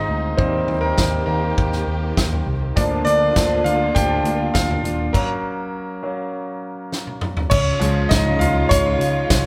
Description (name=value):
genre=piano-driven pop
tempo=101 BPM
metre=4/4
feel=straight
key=Eb major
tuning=A4 = 445 Hz
part: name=bright concert grand piano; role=accompaniment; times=0.0-9.5 s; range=F3 to G5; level=-23 LUFS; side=equal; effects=none
part: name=warm studio string section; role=sustained chords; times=0.0-9.5 s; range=Db3 to G4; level=-32 LUFS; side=equal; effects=none
part: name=vintage muted picked electric bass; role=bass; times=0.0-9.5 s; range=Eb1 to Eb2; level=-26 LUFS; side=equal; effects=none
part: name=natural country drum kit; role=drums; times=0.4-9.4 s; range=crash cymbal, hi-hat, kick drum, snare drum, toms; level=-24 LUFS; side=equal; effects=none
part: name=fingerpicked steel-string acoustic guitar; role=riff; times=2.8-5.1 s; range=D3 to F4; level=-28 LUFS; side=equal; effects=none
room=wet large studio reverb, RT60 1.4 s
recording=band playing live in one room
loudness=-20 LUFS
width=mono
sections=0.0-7.5 A section; 7.5-9.5 B section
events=grand piano solo 0.0-7.5, 7.5-9.5; stop 5.1-7.5; drum fill 6.9-7.5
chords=0.4 Eb; 2.8 Bb/D; 5.1 Gb; 7.5 Db